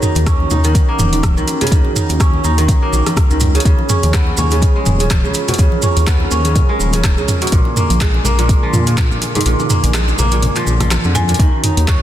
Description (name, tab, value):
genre	afro house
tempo	124 BPM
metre	4/4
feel	swing 56% on 16ths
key	Eb minor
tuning	A4 = 440 Hz
part	warm analog pad	sustained chords	0.0-12.0 s	D3 to Bb4	-24 LUFS	right 2 dB	lush chorus, sidechain pumping
part	kora	arpeggios	0.0-12.0 s	Ab2 to Eb4	-19 LUFS	right 1 dB	sidechain pumping, dub echo
part	deep house drum kit	drums	0.0-12.0 s	handclaps, hi-hat, rim click, toms	-20 LUFS	right 1 dB	soft clipping on snare
part	maracas	percussion	0.0-11.4 s	none	-26 LUFS	right 4 dB	none
part	dark detuned saw bass	bass	0.2-12.0 s	Eb1 to Bb2	-16 LUFS	equal	sidechain pumping
part	congas	percussion	0.2-11.3 s	none	-24 LUFS	left 2 dB	none
part	electronic kick drum	drums	0.3-12.0 s	none	-14 LUFS	equal	none
part	marimba with hard mallets	melody	11.2-12.0 s	Ab5	-23 LUFS	left 5 dB	dub echo
room	light reverb, studio reverb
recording	dense, heavily limited modern master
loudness	-12 LUFS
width	side -12 dB against mid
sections	0.0-11.4 A section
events	kick drops out 9.5-11.4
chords	0.0 Ebm7; 3.7 Db/Eb; 7.5 Bb7; 11.4 Ebm7